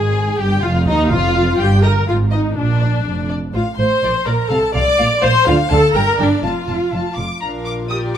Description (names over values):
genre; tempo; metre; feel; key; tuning
quick classical-period movement for string orchestra; 124 BPM; 2/4; straight; Bb major from 3.5 s; A4 = 440 Hz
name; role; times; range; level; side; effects
warm symphonic violin section; melody; 0.0-8.2 s; Eb4 to Eb6; -25 LUFS; left 4 dB; none
dark chamber violin section; second line; 0.0-8.2 s; Bb4 to D6; -24 LUFS; left 4 dB; none
warm chamber viola section; accompaniment; 0.0-8.2 s; D4 to D5; -18 LUFS; equal; none
dark symphonic cello section; bass; 0.0-8.2 s; Eb2 to G4; -20 LUFS; right 1 dB; none
warm symphonic double bass section; bass; 0.0-8.2 s; F1 to Eb2; -20 LUFS; right 2 dB; none
room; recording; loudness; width
light reverb; close, detailed microphones; -14 LUFS; side -9 dB against mid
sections
0.0-7.4 A section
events
none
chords
0.2 N.C.; 0.6 Ebsus2/F; 1.1 N.C.; 1.6 Eb/G (rootless); 2.1 Fm7/Ab; 2.6 Bb; 3.5 F/A; 4.0 Bb; 4.5 F/C; 5.0 Bb; 5.5 Dm; 5.9 Gm; 6.4 F; 7.4 Bb